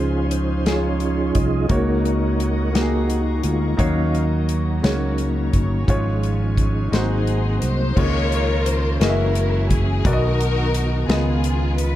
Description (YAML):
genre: slow gospel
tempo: 58 BPM (dotted quarters)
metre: 6/8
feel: straight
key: Db major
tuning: A4 = 441 Hz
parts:
  - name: clear baby grand piano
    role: accompaniment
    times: 0.0-12.0 s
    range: Ab2 to Fb5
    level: -26 LUFS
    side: left 1 dB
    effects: none
  - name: percussive tonewheel organ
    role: sustained chords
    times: 0.0-12.0 s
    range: Eb3 to F5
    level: -24 LUFS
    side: right 1 dB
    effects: slow rotary speaker, chorus vibrato
  - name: warm studio string section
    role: sustained chords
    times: 0.0-8.0 s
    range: Db4 to Db6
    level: -36 LUFS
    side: left 1 dB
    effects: none
  - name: fingered electric bass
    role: bass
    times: 0.0-12.0 s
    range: Gb1 to Eb2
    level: -21 LUFS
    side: equal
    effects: none
  - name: natural country drum kit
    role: drums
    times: 0.3-11.9 s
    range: crash cymbal, hi-hat, kick drum, snare drum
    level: -23 LUFS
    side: equal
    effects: none
  - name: warm symphonic string section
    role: melody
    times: 6.9-12.0 s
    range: Cb4 to Db5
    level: -24 LUFS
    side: left 2 dB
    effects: none
room: light reverb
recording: dark, warm production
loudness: -18 LUFS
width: side -13 dB against mid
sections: 0.0-8.0 A section; 8.0-12.0 B section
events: tonewheel organ solo 0.0-8.0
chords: 0.0 Dbmaj7; 1.7 Gb6/Db; 3.8 Ebm7; 4.8 Gb/Db; 5.9 Db/Ab; 6.9 Ab7; 8.0 Db69; 9.0 Gb9; 10.0 Cbmaj7; 11.1 Db13